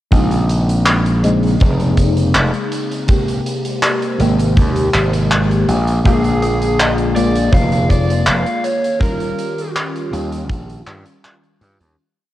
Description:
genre	vaporwave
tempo	81 BPM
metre	4/4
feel	straight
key	Bb dorian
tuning	A4 = 440 Hz
part	FM electric piano with soft pad layer	accompaniment	0.1-12.0 s	C3 to G4	-20 LUFS	left 1 dB	phaser, wide subtle chorus, tape echo
part	warbly tape-like pad	sustained chords	1.0-11.9 s	D3 to C5	-26 LUFS	equal	chorus, built-in reverb, phaser
part	gritty slap bass	bass	0.1-11.9 s	F1 to G2	-16 LUFS	equal	overdrive
part	gated 80s drum kit	drums	0.1-11.9 s	handclaps, hi-hat	-21 LUFS	equal	vintage 12-bit sampler grit
part	kick drum	drums	0.1-10.7 s	none	-15 LUFS	equal	vintage 12-bit sampler grit
part	lead guitar through a small cranked amp	melody	6.1-9.7 s	Ab4 to F5	-21 LUFS	right 1 dB	overdrive, tape echo
room	light reverb, small room ambience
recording	worn, warbling old tape, cassette tape, warbly pitch drift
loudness	-13 LUFS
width	side -14 dB against mid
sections	0.1-12.0 groove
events	fade-out 8.0-12.0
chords	0.1 Bbm11; 3.1 Abmaj9; 5.7 Bb7; 8.6 Eb9

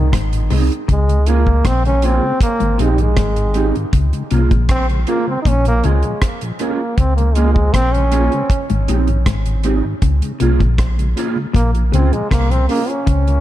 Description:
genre	roots reggae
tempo	79 BPM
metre	4/4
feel	straight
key	unclear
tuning	A4 = 440 Hz
part	bright trombone	melody	0.0-13.4 s	Eb3 to Eb4	-20 LUFS	right 1 dB	dub echo
part	mellow tonewheel organ	accompaniment	0.0-13.4 s	Ab2 to Ab4	-26 LUFS	left 1 dB	chorus vibrato, slow rotary speaker
part	clean electric guitar	riff	0.0-13.3 s	Ab2 to Db3	-22 LUFS	left 5 dB	analog chorus
part	warm sub bass	bass	0.0-13.4 s	Ab1 to Db2	-16 LUFS	equal	none
part	deep reggae drum kit	drums	0.1-13.4 s	hi-hat, kick drum, rim click	-18 LUFS	equal	none
part	mellow electric guitar	accompaniment	0.5-12.9 s	Bb3 to Ab4	-23 LUFS	right 5 dB	ensemble chorus, dub echo
room	light reverb, studio reverb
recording	dark, warm production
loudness	-13 LUFS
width	side -13 dB against mid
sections	0.9-13.4 A section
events	trombone solo 0.9-13.4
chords	0.0 Ab; 0.9 Db6; 2.4 Abmaj7; 3.9 Db6; 5.5 Bbm7; 8.5 Abmaj7; 10.0 Bbm7

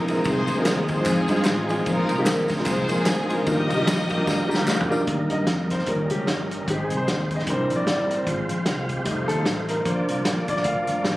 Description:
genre	uptempo gospel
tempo	150 BPM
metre	4/4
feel	swing 57% on 8ths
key	Eb major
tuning	A4 = 439 Hz
part	warm studio string section	melody	0.0-4.9 s	C4 to Eb5	-26 LUFS	equal	none
part	warm upright piano	accompaniment	0.0-11.0 s	Bb2 to Bb5	-26 LUFS	left 1 dB	none
part	overdriven tonewheel organ	sustained chords	0.0-11.2 s	E3 to F5	-29 LUFS	right 1 dB	chorus vibrato, fast rotary speaker
part	fingered electric bass	bass	0.0-11.2 s	F1 to G2	-27 LUFS	equal	none
part	warm soul drum kit	drums	0.1-11.2 s	hi-hat, kick drum, ride cymbal, snare drum, toms	-27 LUFS	equal	none
part	tambourine and handclaps	percussion	0.1-5.0 s	none	-34 LUFS	equal	none
part	mellow French horn section	sustained chords	5.1-11.2 s	Eb3 to F4	-34 LUFS	equal	none
room	light reverb, small room reverb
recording	recorded on a phone in the room, club reverb, compression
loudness	-20 LUFS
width	side -17 dB against mid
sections	0.0-5.1 A section; 5.1-11.2 B section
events	drum fill 4.3-5.1; upright piano fill 4.3-5.1; upright piano solo 5.1-11.2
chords	0.3 Fm7/C; 1.9 Bb9sus4; 3.5 Ebmaj9; 5.1 Eb; 5.9 Eb7; 6.7 Ab; 7.5 C7; 8.3 Fm/Ab; 9.1 F7; 9.9 Bb

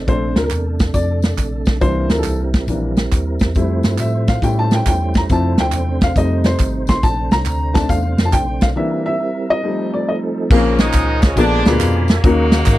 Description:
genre	uptempo gospel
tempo	138 BPM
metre	4/4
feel	swing 66% on 8ths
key	F major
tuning	A4 = 440 Hz
part	warm upright piano	accompaniment	0.0-12.8 s	A#2 to C6	-20 LUFS	left 2 dB	none
part	tonewheel organ	sustained chords	0.0-12.8 s	C3 to C#6	-25 LUFS	right 3 dB	slow rotary speaker, overdrive, chorus vibrato
part	mellow tine electric piano	bass	0.0-12.8 s	Ab1 to A2	-19 LUFS	equal	medium stereo tremolo, tube saturation
part	natural country drum kit	drums	0.1-12.8 s	crash cymbal, hi-hat, kick drum, snare drum	-15 LUFS	equal	none
part	tambourine and handclaps	percussion	0.1-12.8 s	none	-32 LUFS	right 5 dB	none
part	warm horn section	melody	10.5-12.8 s	C#3 to D#4	-19 LUFS	equal	none
room	little or no reverb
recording	dry, close 1970s-style studio recording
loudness	-14 LUFS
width	side -15 dB against mid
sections	0.0-10.5 A section; 10.5-12.8 B section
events	upright piano solo 0.0-10.5; break 8.8-10.5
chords	0.1 Bbmaj7; 1.8 C7; 3.6 Fmaj7; 4.4 A7; 5.3 Dm7; 6.2 F7; 7.0 Bbmaj7; 8.8 C7; 9.6 F7; 10.5 A#m7; 11.4 A#7b9; 12.2 D#m7

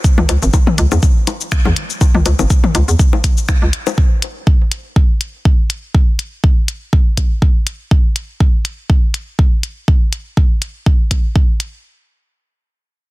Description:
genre	minimal techno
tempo	122 BPM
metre	4/4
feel	swing 55% on 16ths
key	C# minor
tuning	A4 = 440 Hz
part	electronic kick drum	drums	0.0-11.5 s	none	-11 LUFS	equal	none
part	minimal click drum kit	drums	0.0-11.7 s	cabasa, finger snaps, hi-hat	-22 LUFS	left 2 dB	soft clipping on snare
part	hollow knocking FM bass	bass	0.2-3.7 s	G#1 to E2	-13 LUFS	equal	sidechain pumping
part	electronic toms and bongos	percussion	0.2-4.0 s	none	-20 LUFS	left 5 dB	ping-pong delay
room	little or no reverb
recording	dense, heavily limited modern master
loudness	-12 LUFS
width	side -20 dB against mid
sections	0.0-11.8 A section; 11.8-13.1 B section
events	none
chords	none

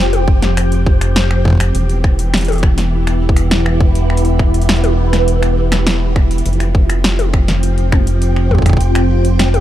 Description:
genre	IDM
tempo	102 BPM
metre	4/4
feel	straight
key	unclear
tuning	A4 = 441 Hz
part	soft string machine	sustained chords	0.0-9.6 s	E3 to G5	-18 LUFS	right 1 dB	phaser, ensemble chorus, sidechain pumping
part	round analog bass	bass	0.0-9.6 s	E1 to F1	-14 LUFS	equal	none
part	electro analog drum machine	drums	0.1-9.6 s	finger snaps, hi-hat, snare drum, toms	-19 LUFS	left 1 dB	none
part	electronic kick drum	drums	0.3-8.8 s	none	-12 LUFS	equal	none
room	little or no reverb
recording	dark, warm production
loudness	-11 LUFS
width	side -13 dB against mid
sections	0.0-9.6 A section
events	none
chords	0.0 Fsus2; 1.7 Em; 6.5 Fsus2

